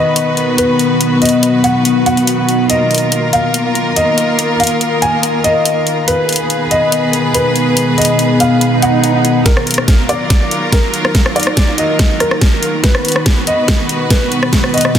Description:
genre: heavy wobble dubstep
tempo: 142 BPM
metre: 4/4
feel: half-time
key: Eb minor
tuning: A4 = 440 Hz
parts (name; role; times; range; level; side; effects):
- dark grand piano; melody; 0.0-15.0 s; Bb4 to Ab5; -17 LUFS; equal; digital delay
- clear studio string section; sustained chords; 0.0-15.0 s; Eb3 to B4; -17 LUFS; equal; sidechain pumping, low-pass filter
- deep dark ambient pad; texture; 0.0-15.0 s; B3 to Eb6; -17 LUFS; left 1 dB; chorus, built-in reverb, sidechain pumping
- dubstep drum kit; drums; 0.2-15.0 s; hi-hat, rim click, snare drum; -16 LUFS; equal; none
- swell; sound effects; 8.7-9.5 s; none; -18 LUFS; right 4 dB; none
- electronic kick drum; drums; 9.5-15.0 s; none; -12 LUFS; equal; none
room: moderate lush hall reverb, RT60 2.1 s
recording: dense, heavily limited modern master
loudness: -10 LUFS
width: side -9 dB against mid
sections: 0.0-9.5 A section; 9.5-15.0 B section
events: swell 8.7-9.5; build-up 9.5-15.0; drum fill 9.5-15.0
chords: 0.0 B; 2.7 Bbsus4; 6.1 Abm; 9.5 Ebmadd9; 12.8 B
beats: 0.16 0.58 | 1.01 1.43 1.85 2.27 | 2.70 3.12 3.54 3.96 | 4.39 4.81 5.23 5.65 | 6.08 6.50 6.92 7.34 | 7.77 8.19 8.61 9.03 | 9.46 9.88 10.30 10.72 | 11.15 11.57 11.99 12.41 | 12.84 13.26 13.68 14.11 | 14.53 14.95

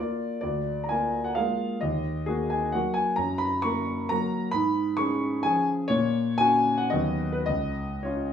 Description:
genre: classical, romantic triple-time dance for piano with dotted rhythms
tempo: 100-143 BPM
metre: 3/4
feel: rubato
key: Eb minor, F# major from 3.2 s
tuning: A4 = 440 Hz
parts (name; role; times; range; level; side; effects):
- warm grand piano; solo; 0.0-8.3 s; C#2 to C#6; -24 LUFS; left 1 dB; none
room: wet stone room reverb, RT60 1.2 s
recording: studio reverb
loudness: -24 LUFS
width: side -8 dB against mid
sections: 0.0-8.3 A section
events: none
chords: 0.4 Bb7/D; 1.8 Ebm; 3.2 F#; 4.5 C#7/G#; 5.9 F#/A#; 6.9 B/D#; 7.5 C#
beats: | 0.42 0.90 1.37 | 1.82 2.28 2.75 | 3.18 3.63 4.10 | 4.53 4.98 5.45 | 5.91 6.40 6.91 | 7.46 8.04

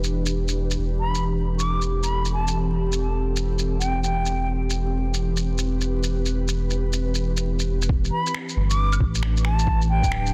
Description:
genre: future garage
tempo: 135 BPM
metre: 4/4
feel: swing 63% on 16ths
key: unclear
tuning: A4 = 440 Hz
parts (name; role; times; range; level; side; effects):
- ethereal airy pad; sustained chords; 0.0-10.3 s; E3 to B4; -31 LUFS; equal; ensemble chorus, built-in reverb, sidechain pumping
- warm sub bass; bass; 0.0-10.3 s; D1 to A1; -26 LUFS; equal; none
- electronic shaker, finger snaps and claves; drums; 0.0-10.3 s; none; -33 LUFS; equal; soft clipping on snare
- hollow concert flute; melody; 1.0-4.5, 8.1-10.3 s; G5 to D6; -31 LUFS; equal; delay
- electronic kick drum; drums; 7.9-10.1 s; none; -25 LUFS; equal; none
room: light reverb, digital ambience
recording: dense, heavily limited modern master, vinyl crackle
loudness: -24 LUFS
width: mono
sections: 0.0-7.9 A section; 7.9-10.3 B section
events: none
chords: 0.0 Em7; 0.8 Am7/E; 7.9 Em7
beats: 0.34 | 0.78 1.23 1.67 2.12 | 2.56 3.00 3.45 3.89 | 4.34 4.78 5.23 5.67 | 6.12 6.56 7.00 7.45 | 7.89 8.34 8.78 9.23 | 9.67 10.12

